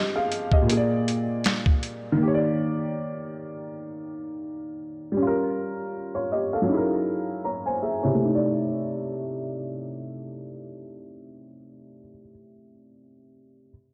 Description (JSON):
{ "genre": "lo-fi hip hop", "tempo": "80 BPM", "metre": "4/4", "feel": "swing 56% on 16ths", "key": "C dorian", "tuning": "A4 = 440 Hz", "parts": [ { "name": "dark upright piano", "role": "accompaniment", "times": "0.0-13.7 s", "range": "Bb2 to A#5", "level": "-28 LUFS", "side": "equal", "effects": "low-pass filter" }, { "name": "boom bap sampler-style drum kit", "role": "drums", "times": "0.3-2.0 s", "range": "finger snaps, hi-hat, kick drum, snare drum", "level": "-25 LUFS", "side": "equal", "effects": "vintage 12-bit sampler grit" } ], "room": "moderate echo chamber reverb, RT60 2.2 s", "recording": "none", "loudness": "-26 LUFS", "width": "mono", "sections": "0.0-8.2 A section; 8.2-11.2 B section", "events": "filter sweep on upright piano 0.0-8.2", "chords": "0.0 Fm7; 0.7 Bb7; 2.2 Ebmaj7; 5.2 Gm7b5; 6.7 F#13; 8.2 Cm69" }